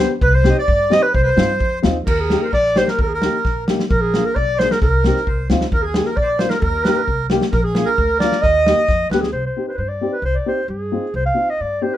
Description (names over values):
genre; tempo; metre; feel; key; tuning
klezmer; 132 BPM; 2/4; straight; Eb major; A4 = 438 Hz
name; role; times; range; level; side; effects
mellow clarinet; melody; 0.0-12.0 s; Ab4 to F5; -19 LUFS; equal; none
accordion; second line; 0.0-9.1 s; Ab4 to Eb5; -23 LUFS; right 6 dB; none
dark upright piano; accompaniment; 0.0-11.9 s; Bb3 to Ab4; -22 LUFS; left 4 dB; none
upright bass; bass; 0.0-11.9 s; Bb1 to G2; -22 LUFS; equal; none
natural country drum kit; drums; 0.2-9.3 s; crash cymbal, kick drum, snare drum; -20 LUFS; equal; none
room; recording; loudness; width
moderate small room reverb, RT60 0.6 s; minimal, uncompressed stereo recording; -15 LUFS; side -12 dB against mid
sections
0.0-2.1 A section; 2.1-9.3 B section; 9.3-12.0 C section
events
speeding up 0.0-12.0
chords
0.2 Cm; 2.1 Eb; 3.9 Bb; 4.8 Cm; 5.7 Eb; 7.5 Bb; 8.4 Eb; 8.9 G7; 9.3 Cm